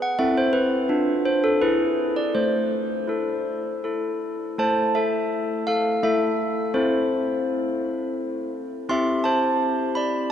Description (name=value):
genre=classical, tune for handbells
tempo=84 BPM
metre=3/4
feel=straight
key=A minor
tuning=A4 = 442 Hz
part: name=handbells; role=solo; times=0.0-10.3 s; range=A3 to C6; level=-21 LUFS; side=equal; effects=none
room=wet cathedral reverb, RT60 6.4 s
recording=dark, warm production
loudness=-21 LUFS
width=side -9 dB against mid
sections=0.0-4.6 A section; 4.6-10.3 B section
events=none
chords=0.2 Am/C; 0.9 Bdim/D; 1.6 E; 2.3 Am; 6.7 Am/C; 8.9 C